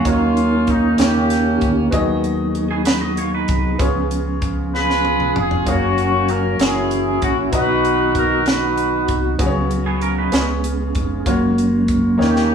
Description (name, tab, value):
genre	slow gospel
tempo	64 BPM (dotted quarters)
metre	6/8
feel	straight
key	F# major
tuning	A4 = 442 Hz
part	clear horn section	melody	0.0-1.9, 4.7-9.4, 12.2-12.5 s	A#3 to B4	-19 LUFS	equal	none
part	clear upright piano	accompaniment	0.0-12.5 s	B2 to A#5	-24 LUFS	left 1 dB	none
part	mellow tonewheel organ	sustained chords	0.0-12.5 s	D#3 to A#4	-20 LUFS	right 1 dB	chorus vibrato, fast rotary speaker
part	deep dub fingered electric bass	bass	0.0-12.5 s	E#1 to D#2	-24 LUFS	equal	none
part	tight funk drum kit	drums	0.1-12.5 s	hi-hat, kick drum, snare drum, toms	-22 LUFS	equal	none
part	twangy electric guitar	second line	2.7-3.8, 9.9-10.5 s	B3 to D#5	-25 LUFS	right 4 dB	vibrato effect
room	wet stone room reverb, RT60 1.0 s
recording	band playing live in one room, small room ambience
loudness	-15 LUFS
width	side -7 dB against mid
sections	0.0-12.5 A section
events	drum fill 4.7-5.7, 12.2-12.5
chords	0.1 D#m7; 1.0 D#7; 1.9 G#m7/D#; 3.8 C#7; 5.7 F#maj7; 6.6 F#7; 7.5 Bmaj7; 9.4 C#7sus4; 10.3 C#7; 11.3 F#maj7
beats	| 0.06 0.99 | 1.93 2.86 | 3.79 4.73 | 5.66 6.59 | 7.53 8.46 | 9.39 10.33 | 11.26 12.19